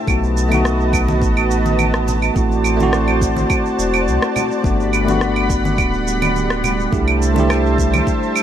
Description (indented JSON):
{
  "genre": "sunset chillout",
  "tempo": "105 BPM",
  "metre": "4/4",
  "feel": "straight",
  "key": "G major",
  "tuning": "A4 = 444 Hz",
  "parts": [
    { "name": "bell-like tine electric piano", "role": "accompaniment", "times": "0.0-8.4 s", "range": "A3 to G4", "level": "-19 LUFS", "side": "moving between left 6 dB and right 5 dB", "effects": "auto-pan, tape echo" },
    { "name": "lush unison pad", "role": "sustained chords", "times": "0.0-8.4 s", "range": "G3 to B5", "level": "-21 LUFS", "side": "right 1 dB", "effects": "chorus" },
    { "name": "warm sub bass", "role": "bass", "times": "0.1-8.0 s", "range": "D1 to C2", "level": "-20 LUFS", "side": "equal", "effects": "none" },
    { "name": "electronic claves, shaker and rim click", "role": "drums", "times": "0.1-8.4 s", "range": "none", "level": "-22 LUFS", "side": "right 3 dB", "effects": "none" },
    { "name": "electronic kick drum", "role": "drums", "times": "0.1-8.2 s", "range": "none", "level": "-21 LUFS", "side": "equal", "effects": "none" },
    { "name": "congas", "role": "percussion", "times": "0.5-8.0 s", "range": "none", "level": "-27 LUFS", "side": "left 2 dB", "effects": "none" }
  ],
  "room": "light reverb, digital ambience",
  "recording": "none",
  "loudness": "-14 LUFS",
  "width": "side -10 dB against mid",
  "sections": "0.0-8.4 A section",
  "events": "none",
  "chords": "0.1 B7; 2.4 D7/A; 4.6 Gmaj7; 6.9 C6",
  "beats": "| 0.07 0.64 1.22 1.79 | 2.36 2.93 3.50 4.07 | 4.64 5.22 5.79 6.36 | 6.93 7.50 8.07"
}